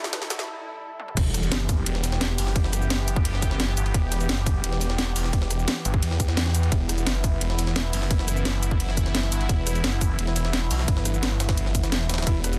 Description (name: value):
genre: dark technical drum and bass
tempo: 173 BPM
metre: 4/4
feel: straight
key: E minor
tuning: A4 = 441 Hz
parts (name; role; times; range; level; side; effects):
- sweeping resonant pad; sustained chords; 0.0-12.6 s; E3 to A4; -34 LUFS; equal; chorus, sidechain pumping
- felt-muted upright piano; arpeggios; 0.0-0.3, 12.3-12.5 s; E4 to B4; -39 LUFS; equal; sidechain pumping, tape echo
- drum and bass drum kit; drums; 0.0-12.6 s; crash cymbal, hi-hat, rim click, shaker, snare drum, toms; -30 LUFS; equal; overdrive, small room ambience
- riser and impact; sound effects; 0.0-2.6 s; none; -40 LUFS; equal; none
- jungle sampler-style drum kit; drums; 0.1-12.6 s; hi-hat, ride cymbal, snare drum; -37 LUFS; equal; high-pass filter on cymbals, small room ambience, high-pass filter on snare, high-pass filter on hats
- snarling distorted saw bass; bass; 1.2-12.6 s; E1 to E2; -28 LUFS; equal; tube saturation, sidechain pumping
- electronic kick drum; drums; 1.2-12.3 s; none; -26 LUFS; equal; overdrive, small room ambience
room: little or no reverb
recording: dense, heavily limited modern master, high-pass filter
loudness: -24 LUFS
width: mono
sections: 0.0-1.2 A section; 1.2-12.6 B section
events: build-up 0.0-1.2; drum fill 0.0-0.5, 1.0; riser 0.0-0.5; break 0.5-1.2; drop 1.2-12.6; impact 1.2-2.6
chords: 0.0 Em